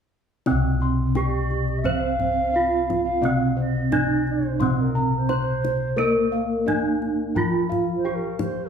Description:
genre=Javanese gamelan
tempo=87 BPM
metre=4/4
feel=straight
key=C slendro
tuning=A4 = 440 Hz
part: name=gamelan-type bronze metallophone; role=melody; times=0.5-8.7 s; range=C4 to C5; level=-25 LUFS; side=right 5 dB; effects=none
part: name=gamelan-type bronze metallophone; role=accompaniment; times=0.5-8.7 s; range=C3 to C4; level=-26 LUFS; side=left 2 dB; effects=none
part: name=gamelan-type bossed gongs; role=arpeggios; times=0.5-8.4 s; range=C5 to C6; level=-32 LUFS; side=left 4 dB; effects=none
part: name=gamelan-type bossed gongs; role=bass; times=0.5-8.7 s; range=C2 to Bb4-25c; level=-28 LUFS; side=left 2 dB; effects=none
part: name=kendang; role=percussion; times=0.5-8.6 s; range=none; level=-32 LUFS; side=left 3 dB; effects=none
part: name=mellow bansuri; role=second line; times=1.2-8.7 s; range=Bb4-23c to F5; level=-27 LUFS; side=right 1 dB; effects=none
room=wet large studio reverb, RT60 1.2 s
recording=band playing live in one room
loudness=-20 LUFS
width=side -7 dB against mid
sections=0.5-8.7 A section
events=none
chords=none

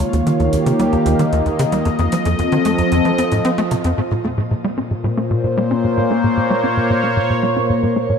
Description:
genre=ambient, sequencer-driven space music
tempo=113 BPM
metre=4/4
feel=straight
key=Bb minor from 4.0 s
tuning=A4 = 440 Hz
part: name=sweeping resonant pad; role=sustained chords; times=0.0-8.2 s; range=Bb2 to Eb5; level=-17 LUFS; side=equal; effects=chorus, shimmer reverb
part: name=tight sequencer bass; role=riff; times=0.0-8.2 s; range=Eb2 to Db4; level=-19 LUFS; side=equal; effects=ensemble chorus, tape echo, shimmer reverb
part: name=electronic hi-hat and woodblock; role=percussion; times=0.0-4.0 s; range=none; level=-35 LUFS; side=right 2 dB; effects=tape echo
part: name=pulsing gated texture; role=texture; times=0.0-4.0 s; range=F4 to F5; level=-33 LUFS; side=right 2 dB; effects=none
room=moderate plate reverb, RT60 2.3 s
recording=dreamy mix soaked in reverb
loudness=-15 LUFS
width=side -6 dB against mid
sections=0.0-4.0 A section; 4.0-8.2 B section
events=filter sweep on analog synth bass 0.0-4.0, 4.0-8.2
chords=0.0 Eb; 1.9 F7; 4.0 Bbmadd9

